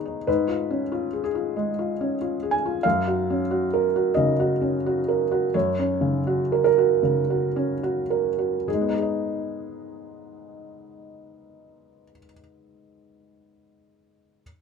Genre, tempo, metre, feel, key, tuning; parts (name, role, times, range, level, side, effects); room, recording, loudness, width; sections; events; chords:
classical; 71-95 BPM; 4/4; rubato; G# dorian; A4 = 440 Hz
felt-muted upright piano; accompaniment; 0.0-14.4 s; F#2 to G#5; -22 LUFS; right 1 dB
light reverb; minimal, uncompressed stereo recording; -21 LUFS; side -6 dB against mid
0.0-8.7 A section; 8.7-11.9 B section
slowing down 1.6-8.7
0.3 C#7/G#; 2.8 F#maj7; 8.7 G#m